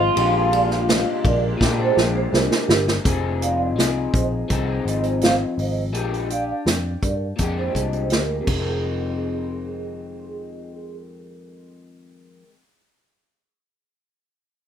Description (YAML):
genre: indie pop, bedroom pop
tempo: 83 BPM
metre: 4/4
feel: straight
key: F dorian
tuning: A4 = 440 Hz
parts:
  - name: electric guitar through a small old amp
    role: melody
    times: 0.0-2.3 s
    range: F4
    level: -23 LUFS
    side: equal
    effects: wide subtle chorus, tape echo
  - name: electric guitar through a small old amp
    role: accompaniment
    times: 0.0-12.6 s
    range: F2 to Ab4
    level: -26 LUFS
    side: left 5 dB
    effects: analog chorus, warbly pitch drift
  - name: granular cloud pad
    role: sustained chords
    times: 0.0-3.0 s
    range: C3 to Ab4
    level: -35 LUFS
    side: left 2 dB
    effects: none
  - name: vintage muted picked electric bass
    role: bass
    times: 0.0-12.4 s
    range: F1 to Bb2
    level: -25 LUFS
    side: equal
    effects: none
  - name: unplugged drum kit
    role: drums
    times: 0.2-8.6 s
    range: crash cymbal, hi-hat, kick drum, ride cymbal, snare drum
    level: -22 LUFS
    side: right 1 dB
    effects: none
  - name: vibraphone with medium mallets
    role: second line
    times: 0.5-11.0 s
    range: G4 to F5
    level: -26 LUFS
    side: right 6 dB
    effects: ensemble chorus, tape echo
room: moderate studio reverb, RT60 0.6 s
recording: rough home demo mix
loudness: -19 LUFS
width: side -8 dB against mid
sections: 0.0-3.0 A section; 3.0-8.8 B section; 8.8-11.7 C section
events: drum fill 1.6-3.0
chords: 0.2 Bb13; 3.0 Fm7; 5.9 Bb13; 8.5 Fm7